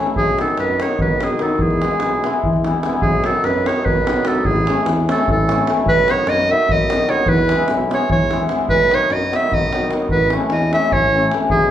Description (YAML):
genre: balkan folk, Balkan wedding band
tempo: 297 BPM (eighths)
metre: 7/8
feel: straight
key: unclear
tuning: A4 = 436 Hz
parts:
  - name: hammered dulcimer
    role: accompaniment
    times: 0.0-11.5 s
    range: D#3 to E4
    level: -21 LUFS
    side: left 3 dB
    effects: none
  - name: davul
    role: percussion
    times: 0.1-11.7 s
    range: none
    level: -21 LUFS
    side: right 1 dB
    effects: none
  - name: bright clarinet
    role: melody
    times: 0.2-11.7 s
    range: G#4 to E5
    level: -18 LUFS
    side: right 1 dB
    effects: none
  - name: warm tuba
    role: bass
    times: 0.2-11.7 s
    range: A1 to F#2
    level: -24 LUFS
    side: equal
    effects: none
room: wet large studio reverb, RT60 1.2 s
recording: band playing live in one room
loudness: -14 LUFS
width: side -11 dB against mid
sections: 0.0-3.0 A section; 3.0-11.7 A section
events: none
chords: 0.2 B; 1.6 E; 3.0 B; 4.4 A; 5.9 B; 7.3 E; 8.7 B; 10.1 A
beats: | 0.17 0.37 0.58 0.78 0.99 1.19 1.39 | 1.60 1.80 2.00 2.21 2.41 2.62 2.82 | 3.02 3.23 3.43 3.63 3.83 4.04 4.24 | 4.44 4.65 4.85 5.05 5.25 5.46 5.66 | 5.86 6.06 6.26 6.47 6.67 6.87 7.07 | 7.27 7.48 7.68 7.88 8.08 8.28 8.48 | 8.68 8.88 9.09 9.29 9.49 9.69 9.89 | 10.09 10.29 10.49 10.69 10.89 11.09 11.29 | 11.49 11.70